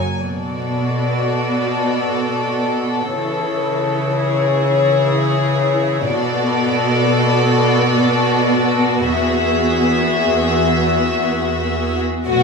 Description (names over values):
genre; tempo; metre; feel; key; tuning
cinematic, emotional film score for orchestra; 56-63 BPM; 3/4; rubato; B dorian; A4 = 438 Hz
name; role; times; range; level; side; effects
warm symphonic violin section; melody; 0.0-0.2, 12.3-12.4 s; D5 to G#5; -31 LUFS; left 1 dB; none
warm symphonic violin section; second line; 0.2-12.4 s; F#4 to E5; -18 LUFS; left 4 dB; none
dark symphonic viola section; accompaniment; 0.2-12.4 s; E3 to B4; -20 LUFS; right 1 dB; none
warm symphonic cello section; bass; 0.2-12.4 s; E2 to C#3; -20 LUFS; equal; none
rich studio double bass section; bass; 12.3-12.4 s; B1; -27 LUFS; right 4 dB; none
room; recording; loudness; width
wet scoring stage reverb, RT60 1.6 s; small room ambience; -15 LUFS; side -4 dB against mid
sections
0.2-12.3 A section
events
none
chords
0.2 Bm7; 3.2 C#m; 6.1 Bm7; 9.1 Eadd9